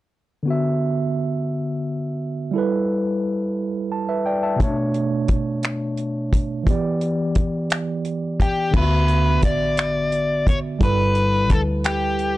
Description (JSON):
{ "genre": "slow six-eight R&B", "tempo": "58 BPM (dotted quarters)", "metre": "6/8", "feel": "straight", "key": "D major", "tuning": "A4 = 441 Hz", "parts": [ { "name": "overdriven tine electric piano", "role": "accompaniment", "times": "0.4-12.4 s", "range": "B2 to A5", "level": "-22 LUFS", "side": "moving between left 2 dB and right 4 dB", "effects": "auto-pan" }, { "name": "damped 70s drum kit", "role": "drums", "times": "4.6-12.3 s", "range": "crash cymbal, finger snaps, hi-hat, kick drum", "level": "-20 LUFS", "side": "equal", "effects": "vintage 12-bit sampler grit" }, { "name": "nasal lead guitar with a parked wah", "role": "melody", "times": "8.4-12.4 s", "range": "G4 to D5", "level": "-22 LUFS", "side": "left 2 dB", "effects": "overdrive" }, { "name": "vintage muted fingered electric bass", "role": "bass", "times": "8.7-12.4 s", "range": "F#1 to D2", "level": "-23 LUFS", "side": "equal", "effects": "transformer saturation" } ], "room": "little or no reverb", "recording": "dry, gritty hardware recording, transformer saturation", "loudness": "-19 LUFS", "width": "side -16 dB against mid", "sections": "0.5-8.7 A section; 8.7-12.4 B section", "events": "tine electric piano fill 3.6-4.6", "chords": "0.5 D69; 2.5 G69; 4.6 Bm9; 6.7 Em7; 8.7 D69; 10.8 G69" }